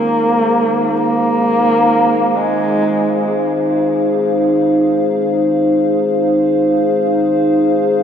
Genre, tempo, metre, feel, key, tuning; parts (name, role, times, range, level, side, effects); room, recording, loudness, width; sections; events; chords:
dark ambient drone; free time; F minor; A4 = 440 Hz
dark horsehead fiddle; melody; 0.0-3.3 s; Ab3 to Bb3; -14 LUFS; equal; dub echo
dark analog pad; sustained chords; 0.0-8.0 s; Eb4 to F5; -14 LUFS; left 1 dB; chorus
wet spring reverb, RT60 2.4 s; echo-heavy mix; -12 LUFS; side -8 dB against mid
0.0-8.0 A section
0.0 Fm7